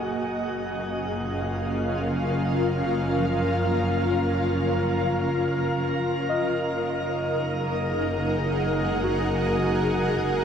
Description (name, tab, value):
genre	ambient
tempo	free time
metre	none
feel	none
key	unclear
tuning	A4 = 440 Hz
part	ethereal airy pad	sustained chords	0.0-10.4 s	A#3 to F#5	-25 LUFS	equal	ensemble chorus, built-in reverb, tremolo
part	muted felt-like synth keys	arpeggios	0.0-10.4 s	E#3 to G#5	-33 LUFS	equal	chorus, tape echo
part	rich chamber double bass section	bass	0.0-10.4 s	F#1	-28 LUFS	equal	none
room	wet shimmer reverb, RT60 9.4 s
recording	none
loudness	-23 LUFS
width	side -7 dB against mid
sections	0.0-10.4 A section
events	fade-in on synth keys 0.0-10.4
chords	0.2 A#m/F#; 6.6 F#69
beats	free time